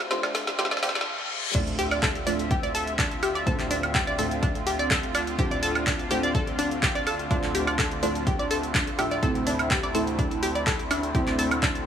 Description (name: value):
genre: progressive house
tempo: 125 BPM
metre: 4/4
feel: straight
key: D minor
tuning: A4 = 437 Hz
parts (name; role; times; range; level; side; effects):
- lush unison pad; sustained chords; 0.0-11.9 s; D3 to E5; -32 LUFS; equal; chorus, phaser, sidechain pumping
- deep mellow chord stab; stabs; 0.0-11.8 s; A3 to E5; -32 LUFS; right 2 dB; chorus, phaser, cassette tape, sidechain pumping, tape echo
- fat analog bass; bass; 0.0-11.9 s; D2; -35 LUFS; equal; sidechain pumping, high-pass filter
- riser, reverse cymbal and sub drop; sound effects; 0.0-3.5 s; none; -35 LUFS; left 4 dB; none
- analog pluck; arpeggios; 0.1-11.7 s; D4 to D6; -29 LUFS; left 1 dB; chorus, sidechain pumping, tape echo
- deep house drum kit; drums; 0.1-11.8 s; cabasa, crash cymbal, handclaps, hi-hat, snare drum, woodblock; -29 LUFS; equal; sidechain pumping on hats, sidechain pumping on perc, sidechain pumping on cymbals
- electronic kick drum; drums; 1.5-11.7 s; none; -28 LUFS; equal; overdrive
room: light reverb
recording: high-pass filter, small room ambience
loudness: -23 LUFS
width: side -8 dB against mid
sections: 0.0-1.5 A section; 1.5-11.9 B section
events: build-up 0.0-1.5; drum fill 0.0-1.1; filter sweep on synth pluck 0.0-1.5; filter sweep on synth stab 0.0-1.5; filter sweep 0.0-1.5; reverse cymbal 0.6-1.5; stop 1.1-1.5; drop 1.5-11.9; impact 1.5-3.5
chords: 0.0 Dm7; 9.2 Am/D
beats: 0.11 0.59 1.07 | 1.55 2.03 2.51 2.99 | 3.47 3.95 4.43 4.91 | 5.39 5.87 6.35 6.83 | 7.31 7.79 8.27 8.75 | 9.23 9.71 10.19 10.67 | 11.15 11.63